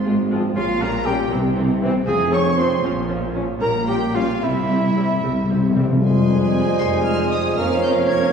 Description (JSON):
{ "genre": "quick classical-period movement for symphony orchestra", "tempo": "78 BPM (dotted quarters)", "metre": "6/8", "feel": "rubato", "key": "F minor", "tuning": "A4 = 439 Hz", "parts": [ { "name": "rich chamber double bass section", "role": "bass", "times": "0.0-8.3 s", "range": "F1 to C2", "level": "-25 LUFS", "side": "equal", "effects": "none" }, { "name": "warm chamber cello section", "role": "bass", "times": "0.0-8.3 s", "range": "F2 to C3", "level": "-24 LUFS", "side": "right 2 dB", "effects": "none" }, { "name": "rich chamber viola section", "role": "accompaniment", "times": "0.1-8.3 s", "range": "E3 to Bb4", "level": "-28 LUFS", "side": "equal", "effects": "none" }, { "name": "warm French horn section", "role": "sustained chords", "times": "0.3-8.3 s", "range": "E3 to F4", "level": "-27 LUFS", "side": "left 1 dB", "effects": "none" }, { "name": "rich chamber violin section", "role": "melody", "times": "0.6-8.3 s", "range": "E5 to Ab6", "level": "-32 LUFS", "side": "left 2 dB", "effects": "none" }, { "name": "bright silver concert flute", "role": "second line", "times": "0.6-8.3 s", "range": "E5 to Db6", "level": "-32 LUFS", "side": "left 1 dB", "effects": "none" }, { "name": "dark clarinet", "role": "second line", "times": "0.6-8.3 s", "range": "E4 to Db5", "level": "-28 LUFS", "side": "left 2 dB", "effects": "none" }, { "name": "mellow cor anglais", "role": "second line", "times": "0.6-8.3 s", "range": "E4 to Eb5", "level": "-26 LUFS", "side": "right 2 dB", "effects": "none" }, { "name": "rich studio violin section", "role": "second line", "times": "0.6-8.3 s", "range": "E5 to Db6", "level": "-31 LUFS", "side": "left 1 dB", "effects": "none" }, { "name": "timpani", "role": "percussion", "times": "4.4-6.0 s", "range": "C3", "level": "-21 LUFS", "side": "left 3 dB", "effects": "none" }, { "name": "mellow bassoon", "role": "accompaniment", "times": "6.0-8.3 s", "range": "F3 to G3", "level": "-26 LUFS", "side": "right 5 dB", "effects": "none" }, { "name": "mellow trumpet section", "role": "stabs", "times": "6.0-8.3 s", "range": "C5 to Db5", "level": "-25 LUFS", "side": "right 4 dB", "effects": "none" } ], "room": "wet scoring stage reverb, RT60 1.9 s", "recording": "heard from further back in the room, small room ambience", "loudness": "-17 LUFS", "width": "side -6 dB against mid", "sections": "0.0-6.0 A section; 6.0-8.3 B section", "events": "timpani fill 4.4-6.0", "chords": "0.0 Fm/Ab; 0.6 Gdim/Bb; 1.3 C; 2.1 F5; 2.8 Bbm; 3.6 Gdim/Bb; 4.4 C; 6.0 Fm; 7.6 Bbm/F" }